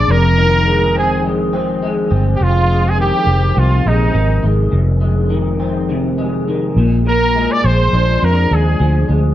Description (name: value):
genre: indie pop, bedroom pop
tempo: 103 BPM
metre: 4/4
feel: swing 55% on 16ths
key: F dorian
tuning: A4 = 442 Hz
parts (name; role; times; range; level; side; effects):
- clear trumpet; melody; 0.0-9.1 s; Eb4 to D5; -16 LUFS; right 1 dB; ensemble chorus, slapback echo, plate reverb
- electric guitar through a small old amp; accompaniment; 0.0-9.3 s; F2 to D4; -18 LUFS; left 2 dB; ensemble chorus, vibrato effect
- vintage muted fingered electric bass; bass; 0.0-9.3 s; F1 to F2; -15 LUFS; equal; none
room: light reverb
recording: dark, warm production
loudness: -12 LUFS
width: side -13 dB against mid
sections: 0.0-2.4 A section; 2.4-9.3 B section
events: trumpet solo 0.0-2.4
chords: 0.1 Fm7; 6.8 Bb7